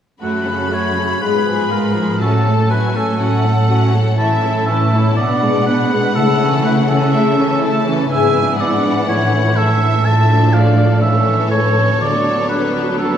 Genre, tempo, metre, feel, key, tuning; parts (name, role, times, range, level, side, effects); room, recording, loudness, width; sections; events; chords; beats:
classical, dramatic, fast romantic movement for symphony orchestra; 122 BPM; 4/4; straight; A major from 8.1 s; A4 = 440 Hz
warm symphonic violin section; melody; 0.2-13.2 s; C#5 to B5; -24 LUFS; left 5 dB
warm oboe; second line; 0.2-13.2 s; A4 to A5; -19 LUFS; right 2 dB
warm symphonic violin section; second line; 0.2-13.2 s; A3 to A4; -24 LUFS; left 2 dB
warm symphonic viola section; accompaniment; 0.2-13.2 s; C#3 to E4; -20 LUFS; right 2 dB
concert harp; arpeggios; 0.2-13.2 s; F#2 to C#5; -21 LUFS; left 5 dB
warm symphonic cello section; bass; 0.2-13.2 s; D2 to C#3; -18 LUFS; right 2 dB
wet scoring stage reverb, RT60 1.7 s; heard from further back in the room; -13 LUFS; side -9 dB against mid
0.2-13.2 A section
0.2 F#m; 1.2 Fdim/Ab; 2.2 F#m/A; 4.2 A; 5.2 G#dim/B; 6.2 A/C#; 8.1 E7/G#; 9.1 A; 10.1 Dm/A; 11.0 A; 12.0 D6
| 0.22 0.72 1.22 1.71 | 2.21 2.71 3.20 3.70 | 4.19 4.68 5.18 5.67 | 6.16 6.65 7.14 7.63 | 8.12 8.61 9.09 9.57 | 10.06 10.54 11.02 11.52 | 12.01 12.49 12.98